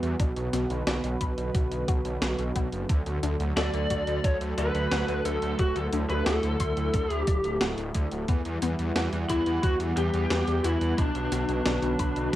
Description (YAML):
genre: synthwave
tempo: 89 BPM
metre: 4/4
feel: straight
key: D major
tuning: A4 = 441 Hz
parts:
  - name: warm analog pad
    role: sustained chords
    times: 0.0-12.4 s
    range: D3 to F#5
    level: -32 LUFS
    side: right 1 dB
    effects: chorus, sidechain pumping, cassette tape
  - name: analog pluck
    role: arpeggios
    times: 0.0-12.4 s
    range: B3 to C6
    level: -37 LUFS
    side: left 7 dB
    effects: chorus, cassette tape, analog delay, plate reverb
  - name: wide detuned saw bass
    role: bass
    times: 0.0-12.4 s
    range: D1 to E2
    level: -30 LUFS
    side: equal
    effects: chorus, sidechain pumping
  - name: gated 80s digital drum machine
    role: drums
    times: 0.0-12.4 s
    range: hi-hat, snare drum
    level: -32 LUFS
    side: right 1 dB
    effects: gated reverb, gated reverb snare, cassette tape
  - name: electronic kick drum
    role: drums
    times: 0.2-12.4 s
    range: none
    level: -26 LUFS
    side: equal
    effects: cassette tape
  - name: lead guitar through a small cranked amp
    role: melody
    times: 3.6-12.4 s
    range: D4 to D5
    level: -30 LUFS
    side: left 1 dB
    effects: overdrive, cassette tape, tape echo, plate reverb
room: light reverb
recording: home recording on cassette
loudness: -24 LUFS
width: side -14 dB against mid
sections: 0.0-12.4 A section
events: none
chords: 0.2 Bm; 2.9 D; 8.3 Emadd9; 11.0 Bm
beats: | 0.20 0.87 1.55 2.22 | 2.90 3.57 4.24 4.92 | 5.59 6.26 6.94 7.61 | 8.29 8.96 9.64 10.31 | 10.98 11.66 12.33